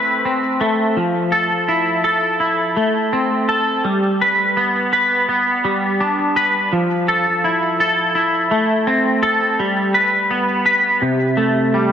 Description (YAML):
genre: rock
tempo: 84 BPM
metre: 4/4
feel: straight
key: F lydian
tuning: A4 = 439 Hz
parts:
  - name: twangy electric guitar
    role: solo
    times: 0.0-11.9 s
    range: C3 to B4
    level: -15 LUFS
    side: equal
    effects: analog chorus, analog delay
room: moderate plate reverb, RT60 3.7 s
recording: dreamy mix soaked in reverb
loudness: -15 LUFS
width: side -8 dB against mid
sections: 1.0-11.9 A section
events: build-up 1.0-11.9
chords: 0.0 Amadd9; 1.0 Fmaj7; 3.8 G; 6.7 Fmaj7; 9.6 G; 11.0 C5